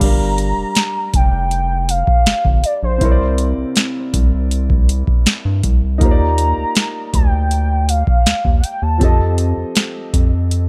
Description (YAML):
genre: contemporary R&B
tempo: 80 BPM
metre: 4/4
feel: straight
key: G minor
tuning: A4 = 440 Hz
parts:
  - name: warm velvety synth lead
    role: melody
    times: 0.0-9.9 s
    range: C5 to Bb5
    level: -23 LUFS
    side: equal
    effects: chorus
  - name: warm concert grand piano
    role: accompaniment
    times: 0.0-10.7 s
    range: C3 to F5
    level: -26 LUFS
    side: equal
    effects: none
  - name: round analog bass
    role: bass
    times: 0.0-10.7 s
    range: F1 to G2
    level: -20 LUFS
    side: equal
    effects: none
  - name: booming analog drum machine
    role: drums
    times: 0.0-10.7 s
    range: crash cymbal, hi-hat, kick drum, snare drum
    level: -17 LUFS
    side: equal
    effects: none
room: little or no reverb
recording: none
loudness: -16 LUFS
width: mono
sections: 0.0-10.7 A section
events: kick muted 10.5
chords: 0.0 Gm7; 3.0 C9; 6.0 Ebmaj7; 9.0 F7